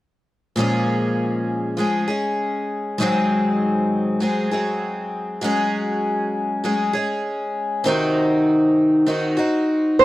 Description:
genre	acoustic folk duo or small band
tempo	99 BPM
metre	4/4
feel	straight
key	Bb minor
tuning	A4 = 440 Hz
part	picked twelve-string acoustic guitar	accompaniment	0.6-10.0 s	Ab2 to Ab4	-18 LUFS	left 1 dB	none
part	picked swing-style acoustic guitar	melody	10.0 s	C5	-8 LUFS	right 3 dB	none
room	moderate booth ambience, RT60 0.2 s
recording	dry, close 1970s-style studio recording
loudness	-18 LUFS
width	side -16 dB against mid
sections	0.6-10.0 A section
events	none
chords	0.6 Bbm7; 3.0 Ab7; 5.4 Gbsus2; 7.9 Cdim

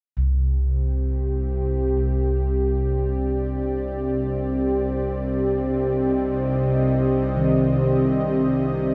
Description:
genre	dark ambient drone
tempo	50 BPM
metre	4/4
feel	straight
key	C minor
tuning	A4 = 442 Hz
part	dark analog pad	sustained chords	0.9-8.9 s	C4 to Eb5	-26 LUFS	equal	chorus
part	gamelan-type bossed gongs	arpeggios	0.2-8.9 s	C2 to Eb3	-28 LUFS	equal	analog delay
part	bowed-like drone	drone	0.6-8.9 s	C2 to C3	-27 LUFS	equal	built-in reverb
room	wet spring reverb, RT60 2.8 s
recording	echo-heavy mix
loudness	-22 LUFS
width	mono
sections	0.2-8.9 A section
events	none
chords	0.2 Cm

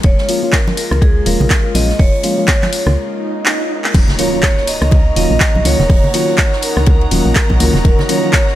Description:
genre	deep house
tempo	123 BPM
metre	4/4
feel	swing 58% on 16ths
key	Eb minor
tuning	A4 = 440 Hz
part	vibraphone with medium hard mallets	melody	0.0-8.4 s	Ab4 to Eb5	-20 LUFS	right 1 dB	dub echo
part	warbly tape-like pad	sustained chords	0.0-8.6 s	Ab3 to Db5	-25 LUFS	left 2 dB	chorus, built-in reverb, sidechain pumping
part	woody FM bass	bass	0.0-7.9 s	Eb1 to Db2	-16 LUFS	equal	sidechain pumping
part	electronic kick drum	drums	0.0-8.4 s	none	-13 LUFS	equal	none
part	natural country drum kit	drums	0.0-8.6 s	hi-hat, ride cymbal, snare drum	-29 LUFS	left 2 dB	sidechain pumping on cymbals, high-pass filter on cymbals, sidechain pumping on hats, high-pass filter on hats, high-pass filter on snare, high-pass filter on room
part	mellow FM electric piano	stabs	0.3-8.4 s	Eb3 to F4	-20 LUFS	equal	chorus, phaser, sidechain pumping
part	deep house drum kit	drums	0.3-8.4 s	crash cymbal, handclaps, hi-hat, rim click	-18 LUFS	equal	none
part	congas	percussion	0.7-8.1 s	none	-21 LUFS	right 2 dB	none
part	swell and impact	sound effects	3.1-5.9 s	none	-25 LUFS	right 2 dB	none
part	airy breathy pad	texture	3.9-8.6 s	Eb4 to Gb5	-27 LUFS	right 2 dB	chorus, sidechain pumping
part	string machine, violins	texture	3.9-8.6 s	Bb5	-28 LUFS	equal	ensemble chorus, sidechain pumping
room	small room ambience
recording	none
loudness	-11 LUFS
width	side -13 dB against mid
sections	0.0-3.9 A section; 3.9-8.6 B section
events	break 3.0-3.9; swell 3.1-3.9; drum fill 3.5-3.9; band accent 3.8; drop 3.9-8.6; impact 3.9-5.9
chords	0.0 Bbm7/Eb; 3.9 Ebm7

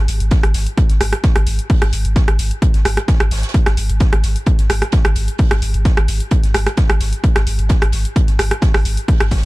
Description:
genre	driving peak-time techno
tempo	130 BPM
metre	4/4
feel	straight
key	unclear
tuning	A4 = 438 Hz
part	saturated sub bass	bass	0.0-9.4 s	G#1	-18 LUFS	equal	tube saturation, sidechain pumping, low-pass filter
part	open jazz drum kit	drums	0.1-9.4 s	hi-hat, snare drum	-33 LUFS	right 4 dB	high-pass filter on hats, high-pass filter on snare, high-pass filter on room
part	punchy analog drum machine	drums	0.1-9.4 s	hi-hat, rim click	-21 LUFS	right 1 dB	none
part	electronic kick drum	drums	0.3-9.4 s	none	-14 LUFS	equal	none
room	small room ambience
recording	dark, warm production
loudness	-13 LUFS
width	side -21 dB against mid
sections	0.0-9.4 A section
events	none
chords	none

